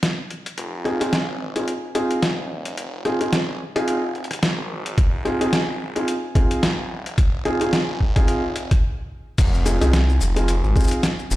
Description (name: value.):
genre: glitch hop.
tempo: 109 BPM.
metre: 4/4.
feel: swing 57% on 16ths.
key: F minor.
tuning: A4 = 440 Hz.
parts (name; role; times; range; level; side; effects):
dark grand piano; stabs; 0.0-11.0 s; C4 to Ab4; -23 LUFS; equal; sidechain pumping, low-pass filter, digital delay.
boom bap sampler-style drum kit; drums; 0.0-11.4 s; crash cymbal, hi-hat, rim click, shaker, snare drum; -24 LUFS; equal; none.
phased detuned saw bass; bass; 0.6-11.4 s; Eb1 to C2; -25 LUFS; equal; phaser, high-pass filter.
electronic kick drum; drums; 5.0-10.9 s; none; -17 LUFS; equal; none.
room: wet studio reverb, RT60 0.6 s.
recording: played on a big sound system in a bare room, stone room reverb.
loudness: -19 LUFS.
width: side -16 dB against mid.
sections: 0.6-9.4 A section; 9.4-11.4 B section.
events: build-up 0.6-9.4; filter sweep on grand piano 0.6-9.4; stop 8.8-9.4; drop 9.4-11.4.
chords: 0.0 Fm7.